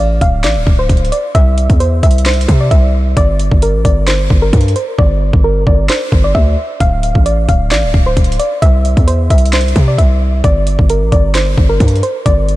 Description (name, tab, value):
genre	hip hop, trap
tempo	132 BPM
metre	4/4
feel	half-time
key	unclear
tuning	A4 = 437 Hz
part	soft round pluck	melody	0.0-12.6 s	Bb4 to F5	-16 LUFS	equal	chorus, ping-pong delay
part	distorted 808-style bass	bass	0.0-12.6 s	D1 to C3	-12 LUFS	equal	distortion
part	trap drum kit	drums	0.2-12.6 s	handclaps, hi-hat, kick drum, snare drum	-13 LUFS	equal	vintage 12-bit sampler grit
room	light reverb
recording	none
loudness	-9 LUFS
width	side -17 dB against mid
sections	0.0-12.6 A section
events	hi-hats muted 5.0-6.8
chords	0.0 Dm; 1.3 C; 3.2 G5; 6.8 Dm; 8.6 C; 10.4 G5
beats	0.44 0.90 | 1.35 1.80 2.26 2.71 | 3.17 3.62 4.08 4.53 | 4.99 5.44 5.89 6.35 | 6.80 7.26 7.71 8.17 | 8.62 9.08 9.53 9.99 | 10.44 10.89 11.35 11.80 | 12.26